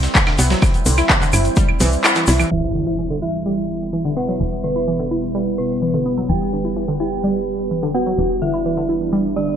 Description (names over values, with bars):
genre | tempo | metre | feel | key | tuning
melodic techno | 127 BPM | 4/4 | straight | E minor | A4 = 442 Hz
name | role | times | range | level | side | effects
deep dark ambient pad | sustained chords | 0.0-9.6 s | G3 to C5 | -26 LUFS | right 2 dB | chorus, built-in reverb, sidechain pumping
tight sequencer bass | bass | 0.0-9.6 s | E1 to C2 | -23 LUFS | equal | sidechain pumping
breakbeat sampler-style drum kit | drums | 0.0-2.5 s | hi-hat, snare drum | -28 LUFS | equal | high-pass filter on hats, high-pass filter on snare, high-pass filter on room
tube shaker | percussion | 0.0-9.6 s | none | -27 LUFS | left 3 dB | none
analog pluck | arpeggios | 0.1-9.5 s | D3 to E4 | -22 LUFS | equal | chorus, sidechain pumping, digital delay
electronic kick drum | drums | 0.2-1.7 s | none | -16 LUFS | equal | overdrive
techno drum kit | drums | 0.2-2.5 s | claves, handclaps, hi-hat | -18 LUFS | equal | overdrive, sidechain pumping on perc, sidechain pumping on hats
soft octave-layered synth lead | melody | 2.5-9.6 s | B3 to G4 | -23 LUFS | equal | chorus, phaser, sidechain pumping, digital delay
dark detuned synth bell | second line | 2.5-9.6 s | B4 to G5 | -27 LUFS | right 2 dB | chorus, tremolo, sidechain pumping, low-pass filter, digital delay
impact | sound effects | 2.5-4.4 s | none | -29 LUFS | equal | none
room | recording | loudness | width
moderate plate reverb, RT60 1.5 s | bright 1980s-style digital production, low-pass filter | -16 LUFS | side -8 dB against mid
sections
0.0-2.5 A section; 2.5-9.6 B section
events
kick drops out 2.0-2.5; band accent 2.0; impact 2.5-4.4; filter sweep on soft synth lead 2.5-9.6; filter sweep on synth bell 2.5-9.6; filter sweep 2.5-9.6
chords
0.0 C; 2.5 Em